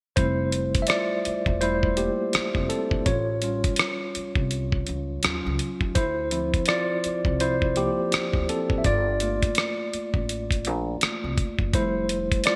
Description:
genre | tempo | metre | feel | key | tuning
R&B, neo-soul | 83 BPM | 4/4 | swing 59% on 16ths | F major | A4 = 440 Hz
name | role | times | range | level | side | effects
tine electric piano | accompaniment | 0.2-12.6 s | F3 to E5 | -28 LUFS | equal | none
upright bass | bass | 0.2-12.3 s | E1 to Eb2 | -32 LUFS | equal | none
dusty soul sampler-style drum kit | drums | 0.2-12.6 s | hi-hat, kick drum, rim click | -27 LUFS | equal | gated reverb
room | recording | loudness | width
moderate plate reverb, RT60 2.5 s | bright 1980s-style digital production | -25 LUFS | mono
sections
0.2-12.6 A section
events
tine electric piano solo 0.2-12.6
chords
0.2 Fmaj7; 3.1 A7alt; 5.2 Ebm9; 6.0 Dm9; 8.8 Gm9; 11.7 Fmaj7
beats
| 0.17 0.89 1.62 2.34 | 3.06 3.79 4.51 5.23 | 5.95 6.68 7.40 8.12 | 8.85 9.57 10.29 11.01 | 11.74 12.46

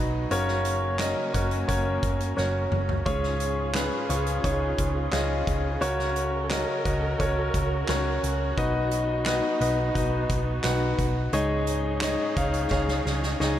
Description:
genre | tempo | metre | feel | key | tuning
piano-driven pop | 87 BPM | 4/4 | straight | unclear | A4 = 440 Hz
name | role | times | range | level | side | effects
warm concert grand piano | accompaniment | 0.0-13.6 s | Ab2 to F#5 | -26 LUFS | left 1 dB | none
warm studio string section | sustained chords | 0.0-13.6 s | Db3 to Bb4 | -35 LUFS | right 2 dB | none
hollow-body short-scale picked electric bass | bass | 0.0-13.6 s | Gb1 to Db2 | -29 LUFS | equal | none
loose indie drum kit | drums | 0.3-13.6 s | handclaps, hi-hat, kick drum, snare drum, toms | -31 LUFS | equal | none
room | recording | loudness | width
moderate huge ambient reverb, RT60 4.1 s | dreamy mix soaked in reverb | -23 LUFS | side -11 dB against mid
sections
0.0-13.6 A section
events
drum fill 2.4-3.1, 12.7-13.6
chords
0.3 Gb; 3.1 Db; 5.8 Gb/Db; 8.6 B; 11.3 Dbsus2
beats
| 0.31 1.00 1.69 2.38 | 3.06 3.75 4.44 5.13 | 5.82 6.51 7.20 7.89 | 8.57 9.27 9.96 10.64 | 11.33 12.02 12.71 13.40

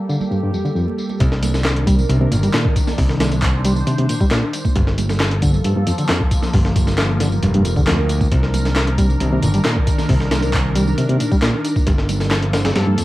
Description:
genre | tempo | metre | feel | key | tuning
breakbeat, breaks | 135 BPM | 4/4 | straight | C minor | A4 = 438 Hz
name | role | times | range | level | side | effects
phased analog pad | sustained chords | 0.0-13.0 s | Eb3 to C5 | -24 LUFS | equal | phaser, chorus, sidechain pumping, cassette tape
barky reed electric piano | riff | 0.1-13.0 s | F2 to G3 | -20 LUFS | equal | overdrive, fast tremolo, vintage 12-bit sampler grit, cassette tape
electronic tambourine and handclaps | drums | 0.1-13.0 s | none | -27 LUFS | equal | overdrive, low-pass filter on perc, cassette tape, low-pass filter on snare, low-pass filter on room
congas | percussion | 0.2-13.0 s | none | -29 LUFS | right 7 dB | none
modern bright picked electric bass | bass | 1.2-12.7 s | F1 to D2 | -19 LUFS | equal | none
breakbeat sampler-style drum kit | drums | 1.2-13.0 s | hi-hat, kick drum, snare drum | -19 LUFS | equal | cassette tape
room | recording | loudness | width
light reverb | home recording on cassette, vinyl crackle | -15 LUFS | side -17 dB against mid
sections
0.0-1.2 A section; 1.2-13.0 B section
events
filter sweep on reed electric piano 0.0-1.2; drop 1.2-13.0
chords
0.0 Gm9; 1.2 Cm9; 4.8 Gm9; 8.3 Cm9; 11.9 Gm9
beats
0.32 0.76 | 1.20 1.65 2.09 2.54 | 2.98 3.43 3.87 4.32 | 4.76 5.20 5.65 6.09 | 6.54 6.98 7.43 7.87 | 8.31 8.76 9.20 9.65 | 10.09 10.54 10.98 11.43 | 11.87 12.31 12.76

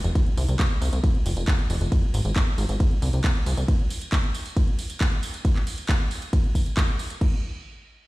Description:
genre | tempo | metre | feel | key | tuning
uplifting trance | 136 BPM | 4/4 | straight | unclear | A4 = 442 Hz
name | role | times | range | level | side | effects
plucky analog bass | bass | 0.0-3.6 s | F1 to C2 | -23 LUFS | equal | sidechain pumping
house drum kit | drums | 0.0-7.2 s | handclaps, hi-hat, ride cymbal, tambourine | -31 LUFS | right 1 dB | sidechain pumping on hats, sidechain pumping on perc, sidechain pumping on cymbals
house drum kit | drums | 0.2-7.3 s | crash cymbal, kick drum | -22 LUFS | equal | none
room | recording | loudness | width
digital ambience | played on a big sound system in a bare room, stone room reverb | -21 LUFS | side -19 dB against mid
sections
0.0-7.2 A section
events
drop 0.0-7.2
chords
none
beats
| 0.15 0.59 1.04 1.48 | 1.92 2.36 2.80 3.24 | 3.68 4.12 4.57 5.01 | 5.45 5.89 6.33 6.77 | 7.21

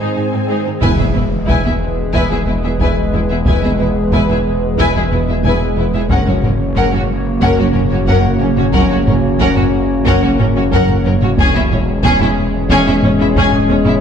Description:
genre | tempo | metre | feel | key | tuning
cinematic, hybrid orchestral and electronic film score | 91 BPM | 4/4 | straight | unclear | A4 = 440 Hz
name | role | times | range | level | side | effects
rich symphonic violin section | second line | 0.0-13.9 s | C#4 to G#5 | -21 LUFS | left 3 dB | none
rich symphonic viola section | accompaniment | 0.0-13.9 s | B#3 to G#4 | -24 LUFS | right 1 dB | none
warbly tape-like pad | sustained chords | 0.0-14.0 s | C#3 to C#5 | -20 LUFS | right 1 dB | chorus, built-in reverb
rich symphonic cello section | bass | 0.0-13.9 s | E2 to G#2 | -21 LUFS | right 2 dB | none
swell and impact | sound effects | 0.0-3.5 s | none | -21 LUFS | equal | none
warm symphonic violin section | melody | 0.8-13.9 s | A#4 to G#5 | -23 LUFS | left 4 dB | none
mellow French horn section | sustained chords | 0.8-14.0 s | G#3 to C#4 | -21 LUFS | left 3 dB | none
phased detuned saw bass | bass | 0.8-14.0 s | E1 to F#1 | -21 LUFS | equal | phaser
rich symphonic double bass section | bass | 0.8-13.8 s | E1 to F#1 | -20 LUFS | right 3 dB | none
taiko ensemble | drums | 0.8-14.0 s | none | -19 LUFS | equal | none
room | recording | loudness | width
moderate scoring stage reverb, RT60 1.5 s | dark, warm production | -12 LUFS | side -8 dB against mid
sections
0.8-14.0 A section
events
swell 0.0-0.8; impact 0.8-3.5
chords
0.0 G#; 0.8 E; 6.1 F#; 11.4 C#m/E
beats
0.17 | 0.83 1.49 2.15 2.81 | 3.47 4.13 4.79 5.44 | 6.10 6.76 7.42 8.08 | 8.74 9.40 10.06 10.72 | 11.38 12.04 12.70 13.36

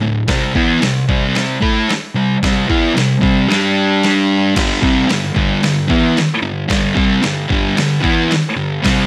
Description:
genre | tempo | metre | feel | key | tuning
garage rock duo or trio | 112 BPM | 4/4 | straight | unclear | A4 = 439 Hz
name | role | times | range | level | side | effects
thick fuzz guitar | riff | 0.0-9.1 s | D2 to A4 | -16 LUFS | equal | distortion
boom bap sampler-style drum kit | drums | 0.3-9.0 s | crash cymbal, hi-hat, kick drum, snare drum | -21 LUFS | equal | none
room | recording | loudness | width
light reverb | none | -15 LUFS | mono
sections
0.0-9.1 A section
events
none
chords
0.3 C5; 3.5 G5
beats
| 0.29 0.82 1.35 1.89 | 2.42 2.96 3.49 4.03 | 4.56 5.10 5.63 6.17 | 6.71 7.24 7.78 8.31 | 8.85

